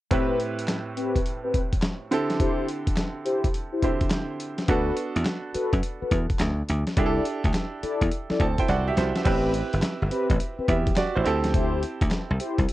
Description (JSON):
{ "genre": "R&B, new jack swing", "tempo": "105 BPM", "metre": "4/4", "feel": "swing 65% on 16ths", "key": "A dorian", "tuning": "A4 = 438 Hz", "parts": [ { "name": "bright grand piano", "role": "accompaniment", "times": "0.1-12.7 s", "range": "A2 to A5", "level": "-28 LUFS", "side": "right 4 dB", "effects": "none" }, { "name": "mellow synth brass", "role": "stabs", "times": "0.1-12.6 s", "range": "C4 to D5", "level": "-28 LUFS", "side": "left 2 dB", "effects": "chorus" }, { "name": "dusty soul sampler-style drum kit", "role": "drums", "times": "0.1-12.7 s", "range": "crash cymbal, handclaps, hi-hat, kick drum, snare drum", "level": "-26 LUFS", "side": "equal", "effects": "overdrive, vintage 12-bit sampler grit" }, { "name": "dry thumbed slap bass", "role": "bass", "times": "4.7-12.7 s", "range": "G1 to F#2", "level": "-26 LUFS", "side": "equal", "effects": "none" } ], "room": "little or no reverb", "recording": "dry, close 1970s-style studio recording", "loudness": "-23 LUFS", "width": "side -16 dB against mid", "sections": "0.1-9.3 A section; 9.3-12.7 B section", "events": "grand piano fill 8.1-9.3; drum fill 8.7-9.3", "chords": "0.1 Am9; 2.1 D9sus4; 4.7 D6; 7.0 C69; 9.3 Am9; 11.3 D9sus4" }